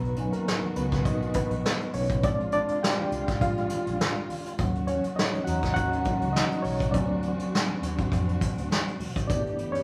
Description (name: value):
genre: lush 1970s-style soul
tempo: 102 BPM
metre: 4/4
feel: swing 54% on 16ths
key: unclear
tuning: A4 = 440 Hz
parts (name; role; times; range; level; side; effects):
- reed electric piano; accompaniment; 0.0-9.8 s; F#3 to G5; -31 LUFS; equal; overdrive, fast tremolo
- warm studio string section; sustained chords; 0.0-9.8 s; B2 to G4; -39 LUFS; equal; none
- vintage muted fingered electric bass; bass; 0.0-9.8 s; G1 to E#2; -34 LUFS; equal; none
- vintage brush drum kit; drums; 0.0-9.8 s; hi-hat, kick drum, snare drum; -31 LUFS; equal; none
- vibraphone with soft mallets; texture; 0.0-9.8 s; F#5 to B5; -45 LUFS; equal; none
- congas; percussion; 0.2-9.7 s; none; -42 LUFS; equal; none
room: moderate stone room reverb, RT60 1.4 s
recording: band playing live in one room, small room ambience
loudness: -27 LUFS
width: mono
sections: 0.0-9.8 A section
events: reed electric piano solo 0.0-9.8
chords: 0.0 Bmaj7; 2.2 A#7; 4.6 D#m7; 6.9 D7b13; 9.3 G69